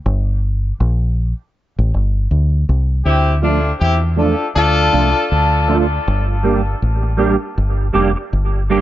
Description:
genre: reggae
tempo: 80 BPM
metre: 4/4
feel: swing 58% on 16ths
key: D minor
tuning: A4 = 440 Hz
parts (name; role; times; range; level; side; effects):
- deep dub fingered electric bass; bass; 0.1-8.8 s; F1 to E2; -16 LUFS; equal; none
- warm horn section; second line; 3.0-5.3 s; A3 to A4; -18 LUFS; left 2 dB; dub echo
- clean electric guitar; accompaniment; 3.4-8.8 s; F3 to G4; -19 LUFS; right 4 dB; ensemble chorus, low-pass filter, dub echo
room: light reverb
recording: nothing above 7.6 kHz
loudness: -14 LUFS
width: side -14 dB against mid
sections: 0.0-3.0 A section; 3.0-8.8 B section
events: break 0.0-3.0, 6.1-8.8; filter sweep on clean electric guitar 3.0-8.8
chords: 0.0 Gm; 3.0 Dm; 6.1 Gm

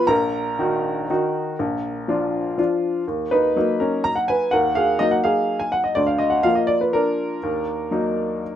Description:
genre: classical, piano waltz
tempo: 122 BPM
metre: 3/4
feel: rubato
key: Eb minor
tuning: A4 = 439 Hz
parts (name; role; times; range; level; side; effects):
- clear upright piano; solo; 0.0-8.6 s; Bb1 to Bb5; -19 LUFS; equal; none
room: light reverb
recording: none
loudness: -19 LUFS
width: side -10 dB against mid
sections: 0.0-3.1 A section; 3.1-8.6 B section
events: none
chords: 0.1 Ebm/Bb; 1.6 Bb; 3.1 Ebm; 6.0 Bb/D; 7.4 Ebm

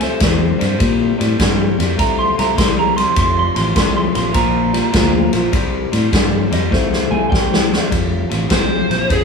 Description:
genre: electric blues shuffle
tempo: 101 BPM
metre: 4/4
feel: swing 67% on 8ths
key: F major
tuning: A4 = 439 Hz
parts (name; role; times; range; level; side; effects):
- electric slide guitar; second line; 0.0-7.9 s; C5 to C6; -20 LUFS; right 5 dB; none
- electric guitar through a small old amp; riff; 0.0-9.2 s; F2 to A3; -20 LUFS; left 3 dB; none
- fingered electric bass; bass; 0.0-9.2 s; F1 to Bb2; -20 LUFS; left 1 dB; none
- swinging big-band drum kit; drums; 0.0-9.2 s; kick drum, ride cymbal, snare drum; -17 LUFS; left 1 dB; none
- lead guitar through a small cranked amp; melody; 8.5-9.2 s; Ab4 to C5; -18 LUFS; equal; overdrive
room: light reverb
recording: band playing live in one room, studio reverb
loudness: -13 LUFS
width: side -5 dB against mid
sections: 0.0-7.9 A section; 7.9-9.2 A section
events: electric slide guitar solo 0.0-7.9; drum fill 6.7-7.9; lead electric guitar solo 7.9-9.2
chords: 0.0 C5; 3.2 F; 4.4 Bb; 5.5 C5; 7.9 F5

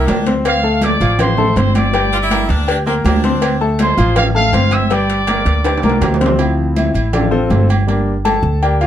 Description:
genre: latin, salsa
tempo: 162 BPM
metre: 4/4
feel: straight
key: D minor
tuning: A4 = 438 Hz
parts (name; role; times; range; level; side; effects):
- bright saxophone section; second line; 0.0-3.7 s; C4 to F4; -22 LUFS; equal; none
- clear concert grand piano; accompaniment; 0.0-8.9 s; F3 to G6; -18 LUFS; left 3 dB; none
- upright bass; bass; 0.0-8.9 s; G1 to D2; -17 LUFS; right 1 dB; none
- congas; percussion; 0.1-8.9 s; none; -20 LUFS; equal; none
- cowbell; percussion; 0.1-6.4 s; none; -24 LUFS; left 6 dB; none
- timbales and agogo bells; percussion; 0.1-8.9 s; none; -22 LUFS; right 5 dB; none
- bright trumpet section; melody; 0.5-6.0 s; C5 to E6; -18 LUFS; right 1 dB; none
room: light reverb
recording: close, detailed microphones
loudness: -12 LUFS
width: side -10 dB against mid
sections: 0.0-6.4 A section; 6.4-8.9 B section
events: drum fill 5.7-6.4; grand piano solo 6.4-8.9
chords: 0.4 Dm7; 1.9 Gm; 3.4 Dm7; 4.9 Gm; 6.4 Dm7; 7.9 Gm

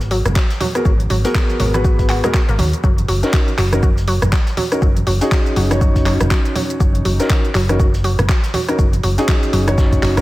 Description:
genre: deep house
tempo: 121 BPM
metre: 4/4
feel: swing 59% on 16ths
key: unclear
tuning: A4 = 440 Hz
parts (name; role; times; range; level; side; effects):
- hollow-body short-scale fingered electric bass; bass; 0.0-10.2 s; F#1 to D#2; -18 LUFS; equal; sidechain pumping
- deep house drum kit; drums; 0.0-10.2 s; handclaps, hi-hat, rim click, shaker; -24 LUFS; equal; overdrive
- raw garage drum kit; drums; 0.0-10.2 s; hi-hat, shaker, snare drum; -34 LUFS; equal; none
- analog pluck; arpeggios; 0.1-10.1 s; F#3 to F#4; -24 LUFS; equal; chorus, sidechain pumping, analog delay
- congas; percussion; 0.3-10.2 s; none; -29 LUFS; right 2 dB; none
- electronic kick drum; drums; 0.4-10.0 s; none; -15 LUFS; equal; overdrive
- felt-muted upright piano; stabs; 0.7-10.2 s; B3 to C#5; -21 LUFS; equal; sidechain pumping, analog delay
room: light reverb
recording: dense, heavily limited modern master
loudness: -13 LUFS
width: side -18 dB against mid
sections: 0.0-10.2 A section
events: none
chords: 0.0 G#m9; 2.8 D#m7/F#

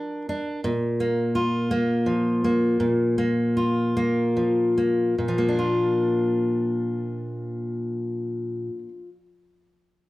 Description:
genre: folk, solo fingerstyle acoustic guitar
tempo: 47-57 BPM (dotted quarters)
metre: 6/8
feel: straight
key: Bb major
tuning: A4 = 444 Hz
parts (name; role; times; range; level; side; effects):
- fingerpicked steel-string acoustic guitar; solo; 0.0-9.1 s; Bb2 to Bb4; -22 LUFS; equal; none
room: wet studio reverb, RT60 0.5 s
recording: heard from further back in the room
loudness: -21 LUFS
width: side -18 dB against mid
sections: 0.6-5.2 A section; 5.2-10.1 B section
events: slowing down 0.6-5.2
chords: 0.0 Bb; 0.6 Bb5; 5.2 Bb

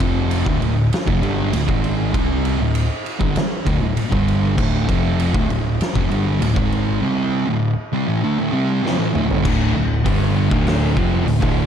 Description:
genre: stoner and doom metal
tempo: 98 BPM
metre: 4/4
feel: straight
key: D minor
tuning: A4 = 442 Hz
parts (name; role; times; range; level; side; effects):
- thick fuzz guitar; riff; 0.0-11.7 s; D2 to C4; -22 LUFS; left 8 dB; distortion
- thick fuzz guitar; riff; 0.0-11.7 s; D2 to C4; -21 LUFS; right 8 dB; distortion
- overdriven picked electric bass; bass; 0.0-11.7 s; D1 to C2; -22 LUFS; equal; none
- oversized low-tuned drum kit; drums; 0.0-11.6 s; crash cymbal, hi-hat, kick drum, ride cymbal, snare drum, toms; -22 LUFS; equal; none
- sludgy distorted guitar; riff; 9.4-11.7 s; D2 to G3; -27 LUFS; left 1 dB; overdrive
room: light reverb, small room reverb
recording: dark, warm production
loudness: -16 LUFS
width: side -8 dB against mid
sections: 0.0-9.4 A section; 9.4-11.7 B section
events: drum fill 8.8-9.4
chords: 0.0 Dm

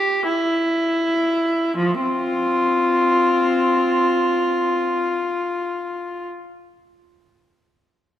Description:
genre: classical, baroque-style suite movement for unaccompanied viola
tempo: 41 BPM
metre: 3/4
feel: rubato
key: unclear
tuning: A4 = 441 Hz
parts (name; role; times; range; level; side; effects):
- rich viola; solo; 0.0-6.2 s; F3 to G4; -18 LUFS; left 1 dB; none
room: moderate scoring stage reverb, RT60 1.8 s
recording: none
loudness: -18 LUFS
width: side -11 dB against mid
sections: 0.0-1.8 A section; 1.8-6.2 B section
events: slowing down 0.0-1.8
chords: none

